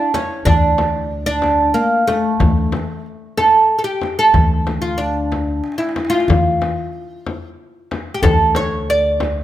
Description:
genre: Arabic maqam ensemble.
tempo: 93 BPM.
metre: 3/4.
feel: straight.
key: D maqam nahawand.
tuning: A4 = 439 Hz.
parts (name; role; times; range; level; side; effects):
oud; melody; 0.0-9.4 s; A3 to D5; -16 LUFS; right 1 dB; none.
darbuka; percussion; 0.1-9.4 s; none; -25 LUFS; right 2 dB; none.
frame drum; percussion; 0.1-9.4 s; none; -21 LUFS; left 3 dB; none.
upright bass; bass; 0.5-9.4 s; D2; -20 LUFS; equal; none.
room: light reverb.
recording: none.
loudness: -14 LUFS.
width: side -12 dB against mid.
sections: 0.0-9.4 A section.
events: drum fill 5.6-6.3.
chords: none.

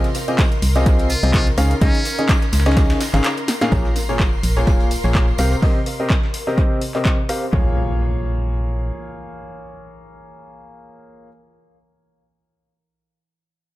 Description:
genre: piano house.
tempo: 126 BPM.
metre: 4/4.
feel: swing 56% on 16ths.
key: Bb dorian.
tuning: A4 = 440 Hz.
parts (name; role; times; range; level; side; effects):
string machine, violins; sustained chords; 0.0-7.5 s; Bb4 to C6; -31 LUFS; left 1 dB; ensemble chorus, sidechain pumping.
bright grand piano; riff; 0.0-11.3 s; Bb2 to F5; -23 LUFS; left 1 dB; sidechain pumping, low-pass filter, analog delay.
dusty soul sampler-style drum kit; drums; 0.0-7.4 s; hi-hat, snare drum; -34 LUFS; equal; none.
punchy analog drum machine; drums; 0.0-7.4 s; handclaps, hi-hat, rim click, snare drum; -26 LUFS; left 1 dB; overdrive, analog delay.
tambourine; percussion; 0.0-5.6 s; none; -35 LUFS; right 6 dB; none.
electronic kick drum; drums; 0.4-7.6 s; none; -17 LUFS; equal; overdrive.
organ-like FM bass; bass; 0.6-8.9 s; Ab1 to Db2; -19 LUFS; equal; sidechain pumping.
trumpet with metal mute; melody; 1.1-2.3 s; Db4 to F4; -27 LUFS; equal; analog delay.
sub drop and impact; sound effects; 3.7-11.3 s; none; -29 LUFS; equal; none.
room: digital ambience.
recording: echo-heavy mix.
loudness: -16 LUFS.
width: side -16 dB against mid.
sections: 0.0-3.7 A section; 3.7-7.5 B section; 7.5-11.3 C section.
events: drop 0.0-3.7; break 3.2-3.7; drum fill 3.5; impact 3.7-5.6; filter sweep on grand piano 3.7-7.5; filter sweep on string machine 3.7-7.5.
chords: 0.0 Fm7/C; 1.6 Dbsus2; 3.7 Bbm7; 5.4 Cm7; 7.5 Bbm7.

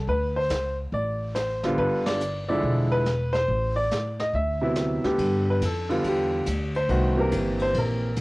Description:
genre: jazz piano trio.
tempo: 141 BPM.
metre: 4/4.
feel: swing 66% on 8ths.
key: G mixolydian.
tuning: A4 = 438 Hz.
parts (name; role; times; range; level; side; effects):
clear concert grand piano; melody; 0.0-8.2 s; C3 to E5; -24 LUFS; equal; cassette tape.
upright bass; bass; 0.0-8.2 s; E1 to A2; -27 LUFS; equal; none.
vintage brush drum kit; drums; 0.1-8.2 s; brushed snare drum, hi-hat, ride cymbal, snare drum; -36 LUFS; equal; cassette tape.
room: light reverb.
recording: home recording on cassette.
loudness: -22 LUFS.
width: side -22 dB against mid.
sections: 0.0-5.2 A section; 5.2-8.2 B section.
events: band accent 2.0; grand piano solo 5.2-8.2.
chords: 0.1 D5; 1.8 G7; 2.6 E7b9; 3.5 Amadd11; 4.3 D13; 5.2 G7; 6.9 C7.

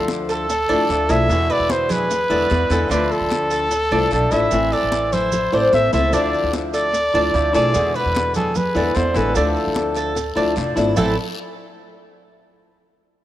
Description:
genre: latin, Cuban son and guajira.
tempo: 149 BPM.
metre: 4/4.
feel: straight.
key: A harmonic minor.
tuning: A4 = 440 Hz.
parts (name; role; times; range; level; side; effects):
warm trumpet; melody; 0.0-10.6 s; A4 to E5; -20 LUFS; equal; none.
flamenco guitar; accompaniment; 0.0-11.1 s; A2 to E4; -22 LUFS; left 2 dB; cassette tape.
upright bass; bass; 0.0-11.2 s; F1 to E2; -25 LUFS; right 1 dB; none.
congas; percussion; 0.1-11.1 s; none; -27 LUFS; equal; none.
guiro; percussion; 0.1-11.1 s; none; -37 LUFS; left 6 dB; none.
maracas; percussion; 0.1-11.1 s; none; -36 LUFS; right 9 dB; none.
Cuban tres; arpeggios; 0.3-11.2 s; A3 to D5; -25 LUFS; right 2 dB; cassette tape.
room: moderate lush hall reverb, RT60 2.8 s.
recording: home recording on cassette.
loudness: -16 LUFS.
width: side -13 dB against mid.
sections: 0.0-11.0 A section; 11.0-12.6 B section.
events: none.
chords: 0.0 Dmadd9; 1.3 E7; 2.9 Dmadd9; 4.5 Am; 6.1 Dmadd9; 7.7 E7; 9.4 Dmadd9; 11.0 A5.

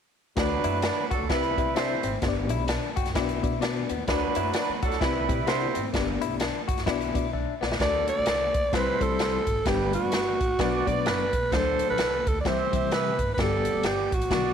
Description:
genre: uptempo 1960s-style soul.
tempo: 129 BPM.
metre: 4/4.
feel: swing 60% on 8ths.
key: D mixolydian.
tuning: A4 = 440 Hz.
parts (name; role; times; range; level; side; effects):
mellow horn section; second line; 0.4-14.5 s; F#3 to E5; -30 LUFS; right 10 dB; none.
reed electric piano; accompaniment; 0.4-14.5 s; D3 to B5; -31 LUFS; left 9 dB; fast tremolo.
upright bass; bass; 0.4-14.5 s; F#1 to C3; -34 LUFS; right 1 dB; none.
swinging big-band drum kit; drums; 0.4-14.4 s; hi-hat, kick drum, snare drum; -29 LUFS; right 1 dB; none.
direct-recorded clean electric guitar; riff; 0.6-7.7 s; B3 to F#4; -33 LUFS; left 12 dB; none.
raspy alto saxophone; melody; 7.8-14.5 s; F#4 to D5; -26 LUFS; equal; none.
room: light reverb, small room reverb.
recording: 1960s-style stereo with parts hard left and right.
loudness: -23 LUFS.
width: side -8 dB against mid.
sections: 0.4-7.8 A section; 7.8-14.5 B section.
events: drum fill 7.3-7.8.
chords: 0.4 D; 1.3 C; 2.2 G; 3.1 Bm; 4.1 D; 5.0 C; 5.9 G; 6.9 Bm; 7.8 D; 8.7 C; 9.7 G; 10.6 Bm; 11.5 D; 12.4 C; 13.4 G.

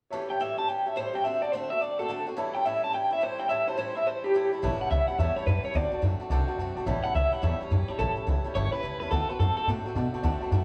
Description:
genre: rock.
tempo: 214 BPM.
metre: 4/4.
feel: swing 64% on 8ths.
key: A mixolydian.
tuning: A4 = 441 Hz.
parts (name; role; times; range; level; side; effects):
picked swing-style acoustic guitar; accompaniment; 0.1-10.6 s; A2 to G4; -38 LUFS; equal; none.
warm upright piano; accompaniment; 0.1-10.6 s; C#5 to A5; -39 LUFS; equal; none.
electric guitar through a small old amp; melody; 0.3-9.7 s; G4 to A5; -30 LUFS; equal; tremolo.
upright bass; bass; 4.6-10.6 s; G1 to B2; -30 LUFS; equal; none.
room: wet large studio reverb, RT60 1.4 s.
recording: band playing live in one room.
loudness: -28 LUFS.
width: mono.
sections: 0.1-4.6 A section; 4.6-10.6 B section.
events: none.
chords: 0.1 A7; 1.2 D7; 2.4 A7; 5.7 D7; 6.9 A7; 9.1 D7.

